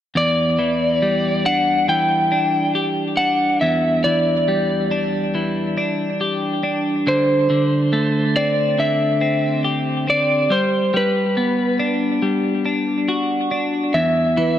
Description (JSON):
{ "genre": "rock", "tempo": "70 BPM", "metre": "4/4", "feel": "straight", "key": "E minor", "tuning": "A4 = 438 Hz", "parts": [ { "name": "electric slide guitar", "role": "melody", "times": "0.2-14.6 s", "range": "B4 to G5", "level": "-19 LUFS", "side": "equal", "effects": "tape echo" }, { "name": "twelve-string electric guitar", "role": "arpeggios", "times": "0.2-14.6 s", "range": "E2 to G4", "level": "-19 LUFS", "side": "equal", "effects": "tape echo" }, { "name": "vibraphone with hard mallets", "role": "arpeggios", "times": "14.4-14.6 s", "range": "B4", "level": "-24 LUFS", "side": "right 11 dB", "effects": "none" } ], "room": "moderate lush hall reverb, RT60 2.0 s, studio reverb", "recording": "dark, warm production", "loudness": "-16 LUFS", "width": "side -11 dB against mid", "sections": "0.2-14.6 A section", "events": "none", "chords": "0.2 Em7; 7.1 D7sus4; 10.5 Gmaj7; 13.9 Em", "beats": "| 0.16 1.02 1.89 2.75 | 3.62 4.48 5.34 6.20 | 7.06 7.92 8.79 9.65 | 10.51 11.36 12.22 13.08 | 13.94" }